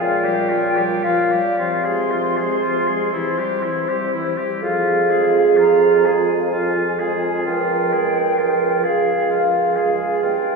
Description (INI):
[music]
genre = classical, slow romantic movement for wind quintet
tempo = 36-45 BPM (dotted quarters)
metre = 6/8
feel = rubato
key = F minor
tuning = A4 = 440 Hz
[part]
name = mellow hollow silver concert flute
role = melody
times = 0.0-10.6 s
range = F5 to C6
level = -22 LUFS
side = left 4 dB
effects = none
[part]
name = warm oboe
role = second line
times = 0.0-10.6 s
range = E4 to Ab4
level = -25 LUFS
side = equal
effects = none
[part]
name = clear clarinet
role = accompaniment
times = 0.0-10.6 s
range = F3 to Db5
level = -32 LUFS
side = equal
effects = none
[part]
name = mellow French horn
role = accompaniment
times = 0.0-10.6 s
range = E3 to Bb4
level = -20 LUFS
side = right 5 dB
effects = none
[part]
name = mellow bassoon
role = bass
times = 0.0-10.6 s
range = Db2 to C3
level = -22 LUFS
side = equal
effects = none
[sound]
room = wet cathedral reverb, RT60 4.6 s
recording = recorded in a church or concert hall, studio ambience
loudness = -16 LUFS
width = side -3 dB against mid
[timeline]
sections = 0.0-4.6 A section; 4.6-10.6 B section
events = none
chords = 0.0 Gm7b5/Bb; 1.6 Fm/C; 3.1 C; 4.6 Fm; 7.5 Db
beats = 0.01 | 1.59 3.14 | 4.62 6.05 | 7.46 8.85 | 10.22